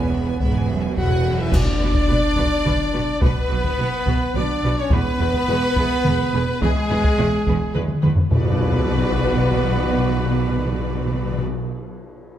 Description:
cinematic, epic orchestral film score; 106 BPM; 3/4; straight; B dorian; A4 = 444 Hz
rich symphonic violin section; melody; 0.0-11.4 s; G#4 to B5; -30 LUFS; left 4 dB
bright symphonic violin section; second line; 0.0-11.4 s; G#4 to G#5; -31 LUFS; left 1 dB
mellow hollow concert flute; second line; 0.0-1.3 s; B4; -37 LUFS; right 1 dB
rich symphonic viola section; accompaniment; 0.0-11.4 s; F#4 to D5; -32 LUFS; equal
mellow French horn section; sustained chords; 0.0-11.4 s; G#3 to F#4; -25 LUFS; equal
rich symphonic cello section; bass; 0.0-11.4 s; E2 to B2; -27 LUFS; right 2 dB
rich symphonic double bass section; bass; 0.0-11.4 s; E1 to B1; -25 LUFS; right 2 dB
taiko ensemble; drums; 0.4-8.4 s; -22 LUFS; equal
warm trumpet; stabs; 1.0-11.4 s; G#4 to F#5; -29 LUFS; right 1 dB
clash cymbals, concert bass drum and tam-tam; percussion; 1.5-2.6, 8.3-10.5 s; -28 LUFS; equal
impact and sub drop; sound effects; 1.6-3.2, 8.3-10.0 s; -29 LUFS; equal
timpani; percussion; 8.3-11.4 s; B2; -24 LUFS; left 3 dB
moderate scoring stage reverb, RT60 1.8 s; -17 LUFS; side -11 dB against mid
0.0-1.6 A section; 1.6-8.3 B section; 8.3-11.7 C section
band accent 1.6-2.1, 8.3-8.9; impact 1.6-3.2, 8.3-10.0; drum fill 7.9-8.3
0.0 E; 1.6 Bm; 4.9 E; 8.3 Bm
0.42 0.99 | 1.55 2.11 2.68 | 3.24 3.81 4.37 | 4.93 5.50 6.06 | 6.62 7.19 7.75 | 8.32 8.88 9.44 | 10.01 10.57 11.14

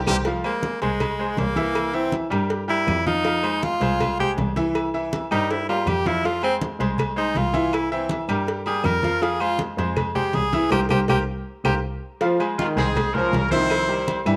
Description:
latin, salsa; 161 BPM; 4/4; straight; F minor; A4 = 440 Hz
rich double bass; bass; 0.0-14.4 s; C2 to G2; -30 LUFS; equal
bright trombone section; second line; 0.1-0.2, 12.2-14.4 s; C3 to G3; -29 LUFS; equal; slapback echo
bright grand piano; accompaniment; 0.1-14.4 s; E3 to F5; -28 LUFS; equal
claves; percussion; 0.1-14.4 s; -39 LUFS; equal
congas; percussion; 0.1-14.4 s; -32 LUFS; equal
cowbell; percussion; 0.1-14.4 s; -34 LUFS; equal
timbales and agogo bells; percussion; 0.1-14.4 s; -35 LUFS; equal
edgy tenor saxophone; melody; 0.5-11.7 s; Ab3 to Bb4; -27 LUFS; equal
brilliant horn section; melody; 12.6-14.2 s; Ab3 to C5; -26 LUFS; equal
moderate echo chamber reverb, RT60 1.3 s, small room ambience; -23 LUFS; mono
0.3-12.2 A section; 12.2-14.4 B section
drum fill 0.0, 5.3-6.2, 11.1-12.2; band accent 0.0, 10.7-12.2; tenor saxophone solo 0.3-12.2
0.3 Fm; 1.8 C7; 3.3 Fm7; 4.8 C7; 6.2 Fm; 7.7 C7; 9.2 Fm; 10.7 C5; 12.2 Fm7; 13.7 C7
| 0.26 0.63 1.01 1.38 | 1.76 2.13 2.51 2.88 | 3.26 3.63 4.00 4.38 | 4.75 5.13 5.50 5.87 | 6.25 6.62 6.99 7.36 | 7.74 8.11 8.48 8.85 | 9.23 9.60 9.97 10.34 | 10.72 11.09 11.46 11.84 | 12.21 12.58 12.95 13.33 | 13.70 14.07

